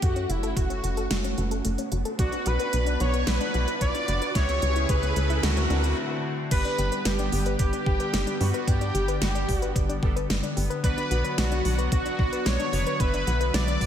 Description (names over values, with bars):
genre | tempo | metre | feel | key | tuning
synthwave | 111 BPM | 4/4 | straight | unclear | A4 = 440 Hz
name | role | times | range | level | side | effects
wide unison lead | melody | 0.0-13.9 s | E4 to D5 | -30 LUFS | equal | digital delay, slapback echo
string machine, violins | second line | 0.0-13.9 s | E4 to D5 | -37 LUFS | equal | ensemble chorus, digital delay, slapback echo
chorused pulse-width pad | sustained chords | 0.0-13.9 s | C#3 to F#5 | -34 LUFS | left 2 dB | sidechain pumping
soft round pluck | arpeggios | 0.0-13.9 s | G#3 to B4 | -35 LUFS | left 5 dB | chorus, digital delay, slapback echo
analog synth brass | stabs | 0.0-13.9 s | G3 to E5 | -35 LUFS | right 3 dB | chorus, digital delay, slapback echo
tight sequencer bass | bass | 0.0-13.9 s | F#1 to G2 | -27 LUFS | equal | tube saturation, sidechain pumping
electronic kick drum | drums | 0.0-13.9 s | none | -25 LUFS | equal | overdrive, small room ambience
pop drum kit | drums | 0.0-13.9 s | crash cymbal, hi-hat, snare drum | -32 LUFS | equal | small room ambience, slapback echo
riser | sound effects | 0.2-6.0 s | none | -38 LUFS | right 1 dB | slapback echo
room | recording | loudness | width
moderate scoring stage reverb, RT60 2.0 s | big arena sound | -23 LUFS | side -9 dB against mid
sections
0.0-6.5 A section; 6.5-13.9 B section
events
filter sweep on analog synth pad 0.0-6.5; filter sweep on synth arpeggio sound 0.0-6.5; filter sweep on analog polysynth 0.0-6.5; riser 0.2-6.0; break 6.0-6.5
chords
0.0 F#m; 2.2 Bm; 4.4 C#m7; 5.4 D7; 6.5 G; 10.8 Bm